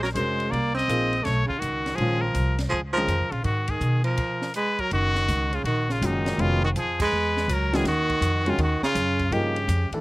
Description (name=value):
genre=jazz, small-group swing and bop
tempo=164 BPM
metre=4/4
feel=swing 65% on 8ths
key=unclear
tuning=A4 = 440 Hz
part: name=trumpet with straight mute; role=melody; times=0.0-9.9 s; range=Eb4 to Eb5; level=-27 LUFS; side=left 2 dB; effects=none
part: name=breathy baritone saxophone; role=second line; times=0.0-9.9 s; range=Bb2 to C4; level=-28 LUFS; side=right 3 dB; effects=slapback echo
part: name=upright bass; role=bass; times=0.0-9.9 s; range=F1 to Cb3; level=-26 LUFS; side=equal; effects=none
part: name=compact cocktail drum kit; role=drums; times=0.0-10.0 s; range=crash cymbal, hi-hat, kick drum, ride cymbal, snare drum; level=-36 LUFS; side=equal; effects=none
part: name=warm concert grand piano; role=accompaniment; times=0.2-3.1, 6.0-10.0 s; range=Eb3 to Bb4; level=-28 LUFS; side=left 1 dB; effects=none
room=little or no reverb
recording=recorded outdoors, with no room sound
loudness=-22 LUFS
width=side -20 dB against mid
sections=0.0-4.9 A section; 4.9-10.0 B section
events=band accent 3.6, 6.9; stop 4.2-4.9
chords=0.0 Ebm11 (rootless); 0.5 Bb9sus4; 1.3 Badd9; 2.0 Bbm7; 3.5 Abm; 4.2 N.C.; 4.9 Gb69; 6.4 Fm7b5; 7.1 E69; 7.9 Ebm9; 9.3 Gm7b5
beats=0.15 | 0.52 0.89 1.25 1.62 | 1.99 2.36 2.72 3.09 | 3.46 3.82 4.19 4.56 | 4.92 5.29 5.66 6.02 | 6.39 6.75 7.12 7.49 | 7.85 8.22 8.59 8.95 | 9.32 9.68